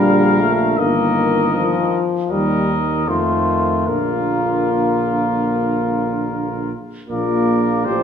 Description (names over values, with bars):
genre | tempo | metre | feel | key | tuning
classical, brass quintet | 74-81 BPM | 4/4 | rubato | Bb major | A4 = 440 Hz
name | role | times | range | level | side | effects
mellow trumpet | melody | 0.0-8.0 s | Bb4 to F5 | -24 LUFS | left 5 dB | none
clear trumpet | second line | 0.0-8.0 s | F4 to C5 | -24 LUFS | right 4 dB | none
warm French horn | accompaniment | 0.0-8.0 s | F3 to G4 | -20 LUFS | left 4 dB | none
warm euphonium | accompaniment | 0.0-8.0 s | D3 to Bb3 | -25 LUFS | right 2 dB | none
mellow tuba | bass | 0.0-8.0 s | G1 to F2 | -21 LUFS | right 2 dB | none
room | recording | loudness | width
wet recital hall reverb, RT60 1.6 s | studio ambience | -16 LUFS | side -7 dB against mid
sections
0.0-7.1 A section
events
none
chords
0.0 Bb; 0.8 Eb/G; 2.3 Eb; 3.1 F7; 3.9 Bb